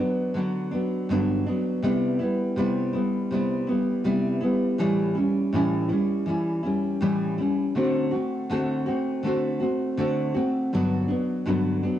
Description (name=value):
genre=indie pop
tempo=81 BPM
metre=4/4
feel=swing 55% on 16ths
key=G major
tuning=A4 = 444 Hz
part: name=nylon-string guitar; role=solo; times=0.0-12.0 s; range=G2 to F#4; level=-22 LUFS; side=equal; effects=wide subtle chorus, warbly pitch drift, cassette tape
room=light reverb, small room ambience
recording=home recording on cassette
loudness=-22 LUFS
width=side -11 dB against mid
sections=0.0-10.7 A section; 10.7-12.0 B section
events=none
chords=0.0 Gmaj7; 1.8 Cmaj7; 4.8 A7; 7.8 D7; 10.7 Gmaj7